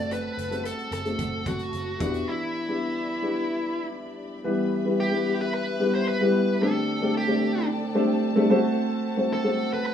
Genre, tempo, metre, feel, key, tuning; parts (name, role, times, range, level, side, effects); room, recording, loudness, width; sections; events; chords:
piano-driven pop; 111 BPM; 4/4; straight; E minor; A4 = 443 Hz
dark smooth lead guitar; melody; 0.0-9.9 s; E4 to D5; -29 LUFS; equal; overdrive, plate reverb
dark upright piano; accompaniment; 0.0-9.9 s; D3 to C5; -24 LUFS; left 1 dB; plate reverb
warm studio string section; sustained chords; 0.0-9.9 s; C4 to B5; -37 LUFS; left 1 dB; plate reverb
vintage muted picked electric bass; bass; 0.0-2.2 s; E1 to F#1; -36 LUFS; right 1 dB
loose indie drum kit; drums; 0.1-2.3 s; hi-hat, kick drum; -37 LUFS; right 1 dB
moderate studio ambience, RT60 0.5 s; rough home demo mix, small room ambience; -23 LUFS; side -8 dB against mid
0.0-4.4 A section; 4.4-9.9 B section
0.0 F#dim; 2.0 Em7; 4.4 Em; 6.6 D7sus4; 8.5 F#dim